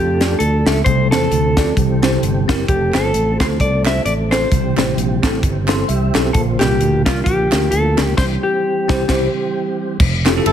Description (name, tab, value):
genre	uptempo gospel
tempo	131 BPM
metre	4/4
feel	swing 57% on 8ths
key	F major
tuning	A4 = 440 Hz
part	clean electric guitar	melody	0.0-9.8 s	F4 to E5	-20 LUFS	left 1 dB	none
part	mellow tonewheel organ	sustained chords	0.0-10.0 s	D3 to E5	-24 LUFS	right 3 dB	fast rotary speaker, chorus vibrato
part	fingered electric bass	bass	0.0-10.5 s	F1 to F2	-19 LUFS	equal	none
part	bell-like tine electric piano	accompaniment	0.2-10.5 s	Bb2 to C6	-21 LUFS	left 1 dB	fast stereo tremolo
part	crisp fusion drum kit	drums	0.2-10.5 s	crash cymbal, hi-hat, kick drum, ride cymbal, snare drum	-19 LUFS	equal	none
part	group handclap	percussion	2.9-10.4 s	none	-28 LUFS	right 5 dB	none
part	bright saxophone section	melody	10.4-10.5 s	C4 to A4	-14 LUFS	equal	none
room	light reverb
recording	heavily compressed radio sound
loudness	-14 LUFS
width	side -9 dB against mid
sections	0.0-10.0 A section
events	tine electric piano fill 5.4-6.3, 9.1-10.0; band accent 8.2-10.0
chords	0.0 Dm; 0.9 F/C; 1.8 C; 2.7 F; 4.5 C; 6.3 Bb; 8.2 C; 10.0 Fmaj9